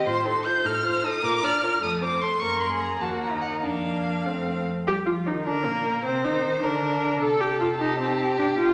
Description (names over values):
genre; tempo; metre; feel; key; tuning
quick classical-period movement for string quartet; 95-106 BPM (dotted quarters); 6/8; rubato; Bb major; A4 = 438 Hz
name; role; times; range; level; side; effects
warm violin; melody; 0.0-8.7 s; Bb3 to G6; -30 LUFS; equal; none
warm violin; second line; 0.0-8.7 s; C4 to D5; -30 LUFS; equal; none
warm viola; accompaniment; 0.0-8.7 s; A3 to A4; -30 LUFS; equal; none
warm cello; bass; 0.0-8.7 s; Eb2 to G3; -35 LUFS; equal; none
room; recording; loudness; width
wet recital hall reverb, RT60 1.7 s; nothing above 10.6 kHz; -25 LUFS; mono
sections
0.0-4.9 A section; 4.9-8.7 B section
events
none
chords
0.1 F7/A; 1.2 Bb; 1.8 F; 2.4 Gb; 3.0 Ebm; 3.6 Bb/F; 4.3 F; 4.9 Bb; 6.1 Cm; 6.6 Bb/D; 7.2 C5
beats
| 0.06 0.64 | 1.23 1.81 | 2.40 3.01 | 3.62 4.25 | 4.87 5.47 | 6.06 6.64 | 7.22 7.80 | 8.38